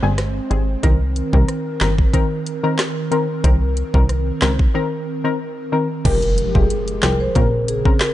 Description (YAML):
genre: dancehall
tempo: 92 BPM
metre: 4/4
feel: straight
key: unclear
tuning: A4 = 444 Hz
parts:
  - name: punchy chord stab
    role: accompaniment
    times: 0.0-8.0 s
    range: Db3 to Bb4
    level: -22 LUFS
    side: left 2 dB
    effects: chorus
  - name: airy breathy pad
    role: sustained chords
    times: 0.0-8.1 s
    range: Db3 to C5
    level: -26 LUFS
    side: right 1 dB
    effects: chorus, sidechain pumping
  - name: plucky analog bass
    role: bass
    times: 0.0-7.9 s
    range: F1 to Db2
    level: -19 LUFS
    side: equal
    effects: none
  - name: afro-pop drum kit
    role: drums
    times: 0.2-8.1 s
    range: crash cymbal, handclaps, hi-hat, kick drum, rim click, snare drum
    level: -18 LUFS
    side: equal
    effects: overdrive
  - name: marimba with soft mallets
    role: melody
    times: 6.1-8.1 s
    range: Ab4 to C5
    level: -21 LUFS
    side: equal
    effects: digital delay
  - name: impact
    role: sound effects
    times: 6.1-8.1 s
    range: none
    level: -27 LUFS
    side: equal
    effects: none
room: little or no reverb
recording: dark, warm production, nothing above 10.4 kHz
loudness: -16 LUFS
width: side -14 dB against mid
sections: 0.0-6.1 A section; 6.1-8.1 B section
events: break 4.7-6.1; impact 6.1-8.1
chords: 0.0 Abmaj7; 0.8 Cm7; 6.1 Fmadd9; 7.4 Bbmadd9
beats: 0.18 | 0.83 1.49 2.14 2.79 | 3.44 4.09 4.75 5.40 | 6.05 6.70 7.36 8.01